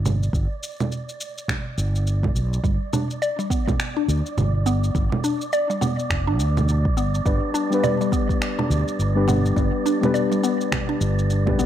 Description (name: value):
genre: organic downtempo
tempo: 104 BPM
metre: 4/4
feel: swing 60% on 16ths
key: G major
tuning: A4 = 441 Hz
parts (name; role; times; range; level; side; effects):
- fretless electric bass; bass; 0.0-11.7 s; F1 to D2; -21 LUFS; equal; sidechain pumping
- wind-like tuned noise texture; texture; 0.0-11.7 s; D5; -33 LUFS; right 5 dB; built-in reverb
- electronic congas, shaker and finger snaps; drums; 0.1-11.7 s; none; -26 LUFS; right 2 dB; none
- electronic kick drum; drums; 0.3-11.6 s; none; -24 LUFS; equal; none
- mallet-like synth pluck; arpeggios; 2.6-11.7 s; G3 to D5; -26 LUFS; left 1 dB; chorus, phaser, tape echo
- muted felt-like synth keys; accompaniment; 7.2-11.7 s; G3 to B4; -23 LUFS; left 4 dB; chorus, sidechain pumping, tape echo
room: little or no reverb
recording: dry, gritty hardware recording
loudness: -20 LUFS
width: side -11 dB against mid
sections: 0.0-11.7 A section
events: none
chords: 0.0 G